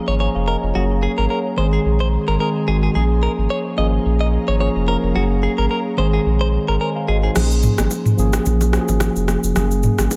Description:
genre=afrobeats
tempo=109 BPM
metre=4/4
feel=swing 55% on 16ths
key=unclear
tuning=A4 = 440 Hz
part: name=mellow tine electric piano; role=accompaniment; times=0.0-10.2 s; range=Eb3 to Ab5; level=-23 LUFS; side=equal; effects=none
part: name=ethereal airy pad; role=sustained chords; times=0.0-7.3 s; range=Ab4 to C6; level=-34 LUFS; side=equal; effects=ensemble chorus, built-in reverb, phaser
part: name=direct-recorded clean electric guitar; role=riff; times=0.1-7.3 s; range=Gb4 to Eb5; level=-27 LUFS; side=equal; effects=spring reverb, delay
part: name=warm sub bass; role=bass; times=0.1-10.1 s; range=F1 to Bb1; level=-21 LUFS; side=equal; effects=none
part: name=afro-pop drum kit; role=drums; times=7.4-10.2 s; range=crash cymbal, rim click, shaker, toms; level=-23 LUFS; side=equal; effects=none
part: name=congas and bongos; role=percussion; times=7.4-10.2 s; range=none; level=-28 LUFS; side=equal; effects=none
room=little or no reverb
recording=none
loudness=-18 LUFS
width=mono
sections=0.0-7.4 A section; 7.4-10.2 B section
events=kick muted 7.4-10.2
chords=0.0 Db6/Ab; 0.8 Gbadd9; 1.6 Ab; 3.0 Bbm7; 3.8 Db6/Ab; 5.2 Gbadd9; 6.0 Ab; 7.4 Bbm7; 8.2 Db6/Ab; 9.6 Gbadd9

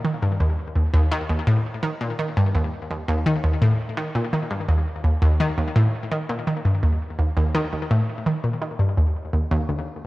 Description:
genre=ambient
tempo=84 BPM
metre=4/4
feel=straight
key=unclear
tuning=A4 = 440 Hz
part: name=analog pluck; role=solo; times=0.0-9.9 s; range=D2 to Eb3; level=-20 LUFS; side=equal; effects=chorus, ping-pong delay
room=moderate plate reverb, RT60 2.8 s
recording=worn, warbling old tape, cassette tape, warbly pitch drift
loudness=-20 LUFS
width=side -18 dB against mid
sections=0.0-10.1 A section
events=none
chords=none

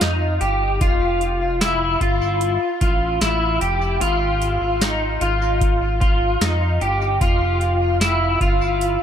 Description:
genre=dream pop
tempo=75 BPM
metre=4/4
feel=straight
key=unclear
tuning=A4 = 440 Hz
part: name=electric guitar at the edge of break-up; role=arpeggios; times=0.0-9.0 s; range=Eb4 to G4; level=-20 LUFS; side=left 1 dB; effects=ensemble chorus, tape echo, shimmer reverb
part: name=chorused synth bass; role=bass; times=0.0-9.0 s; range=F1 to F2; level=-22 LUFS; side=equal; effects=none
part: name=booming analog drum machine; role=drums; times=0.0-9.0 s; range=hi-hat, kick drum, snare drum, tambourine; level=-21 LUFS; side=equal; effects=overdrive
room=moderate spring reverb, RT60 2.5 s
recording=echo-heavy mix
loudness=-17 LUFS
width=side -9 dB against mid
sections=0.0-9.0 A section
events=none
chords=0.0 N.C.; 0.8 Fmaj7; 4.0 Ab5; 7.2 Fmaj7(no3)

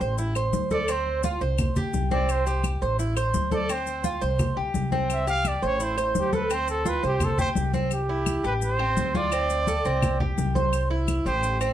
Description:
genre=latin, Cuban son and guajira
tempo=170 BPM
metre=4/4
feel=straight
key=C major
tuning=A4 = 440 Hz
part: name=Cuban tres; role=arpeggios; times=0.0-11.7 s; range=C4 to C5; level=-27 LUFS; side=right 1 dB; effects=none
part: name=upright bass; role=bass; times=0.0-11.7 s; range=A1 to D2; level=-28 LUFS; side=equal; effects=none
part: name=congas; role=percussion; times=0.0-11.7 s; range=none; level=-29 LUFS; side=left 2 dB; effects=none
part: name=maracas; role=percussion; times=0.0-11.7 s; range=none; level=-40 LUFS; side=left 10 dB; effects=none
part: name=claves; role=percussion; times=0.4-11.7 s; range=none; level=-38 LUFS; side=left 4 dB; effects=none
part: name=breathy trumpet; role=melody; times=0.7-11.6 s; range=E4 to F5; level=-28 LUFS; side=right 3 dB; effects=none
room=moderate studio reverb, RT60 0.5 s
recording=dark, warm production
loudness=-22 LUFS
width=side -11 dB against mid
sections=0.0-7.9 A section; 7.9-11.7 B section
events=trumpet solo 0.0-7.9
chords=0.2 Am; 0.9 Dm7; 1.6 C5; 3.0 Am; 3.7 Dm7; 4.4 C5; 5.8 Am; 6.5 Dm7; 7.2 C5; 7.9 C; 8.6 Am7; 9.3 D5; 10.0 C

